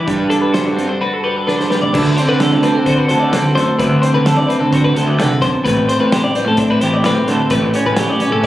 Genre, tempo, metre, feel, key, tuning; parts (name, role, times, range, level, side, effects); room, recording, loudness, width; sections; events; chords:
math rock and midwest emo; 129 BPM; 4/4; straight; A4 = 440 Hz
twelve-string electric guitar; accompaniment; 0.0-8.5 s; G2 to A4; -16 LUFS; right 2 dB; lush chorus
twelve-string electric guitar; arpeggios; 0.0-8.5 s; A4 to D5; -19 LUFS; left 3 dB; analog delay
fuzz picked electric bass; bass; 0.1-8.5 s; A1 to D3; -17 LUFS; equal; overdrive
loose indie drum kit; drums; 0.1-8.5 s; crash cymbal, hi-hat, kick drum, snare drum, toms; -22 LUFS; equal
light reverb; recorded on a phone in the room, club reverb, compression; -12 LUFS; side -14 dB against mid
0.0-1.9 A section; 1.9-8.5 B section
drum fill 1.5-1.9
0.1 Gmaj7; 1.9 D7; 5.7 Am7; 7.5 A7